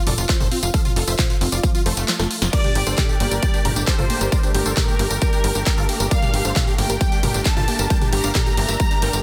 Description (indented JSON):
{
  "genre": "uplifting trance",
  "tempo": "134 BPM",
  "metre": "4/4",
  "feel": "straight",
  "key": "G minor",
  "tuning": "A4 = 441 Hz",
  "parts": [
    { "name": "big supersaw lead", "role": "melody", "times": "0.0-9.2 s", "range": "F4 to G5", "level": "-30 LUFS", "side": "equal", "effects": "phaser, sidechain pumping, delay" },
    { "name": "unison pluck", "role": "arpeggios", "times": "0.0-9.2 s", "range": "F3 to F5", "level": "-32 LUFS", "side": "equal", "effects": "sidechain pumping, delay" },
    { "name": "tight sequencer bass", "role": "bass", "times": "0.1-9.2 s", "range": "F1 to G1", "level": "-26 LUFS", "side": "equal", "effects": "sidechain pumping" },
    { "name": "punchy analog drum machine", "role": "drums", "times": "0.1-9.2 s", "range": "crash cymbal, handclaps, hi-hat, ride cymbal, snare drum, tambourine, toms", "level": "-26 LUFS", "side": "equal", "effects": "none" },
    { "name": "electronic kick drum", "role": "drums", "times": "0.3-8.9 s", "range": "none", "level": "-22 LUFS", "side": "equal", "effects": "overdrive" },
    { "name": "rich chamber violin section", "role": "second line", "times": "2.5-9.2 s", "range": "Bb4 to Bb5", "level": "-29 LUFS", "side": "equal", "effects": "dub echo" },
    { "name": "lush unison pad", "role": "sustained chords", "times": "2.5-9.2 s", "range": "A3 to Bb4", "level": "-33 LUFS", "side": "equal", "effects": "chorus, phaser, sidechain pumping" }
  ],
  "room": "light reverb",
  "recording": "dense, heavily limited modern master",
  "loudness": "-19 LUFS",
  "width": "mono",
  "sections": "0.0-9.2 A section",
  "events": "kick drops out 2.1-2.5; drum fill 2.1-2.5",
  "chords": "0.0 F; 2.5 Gmadd9"
}